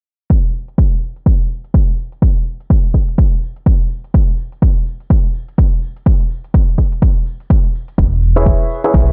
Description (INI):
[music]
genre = piano house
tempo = 125 BPM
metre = 4/4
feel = swing 59% on 16ths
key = E major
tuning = A4 = 440 Hz
[part]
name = electronic hi-hat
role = drums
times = 0.3-9.1 s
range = none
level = -57 LUFS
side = equal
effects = none
[part]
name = electronic kick drum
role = drums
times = 0.3-9.1 s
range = none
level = -14 LUFS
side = equal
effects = overdrive
[part]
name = tambourine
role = percussion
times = 0.3-9.1 s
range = none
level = -64 LUFS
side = equal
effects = none
[part]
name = organ-like FM bass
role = bass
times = 8.0-9.1 s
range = E1 to B1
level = -15 LUFS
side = equal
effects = sidechain pumping
[part]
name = bright baby grand piano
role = riff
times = 8.4-9.1 s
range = E4 to E5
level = -18 LUFS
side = equal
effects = sidechain pumping
[sound]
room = digital ambience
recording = low-pass filter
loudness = -15 LUFS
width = mono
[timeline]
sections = 0.3-9.1 A section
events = filter sweep 0.3-9.1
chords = 0.3 N.C.; 8.0 E6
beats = | 0.30 0.78 1.26 1.74 | 2.22 2.70 3.18 3.66 | 4.14 4.62 5.10 5.58 | 6.06 6.54 7.02 7.50 | 7.98 8.46 8.94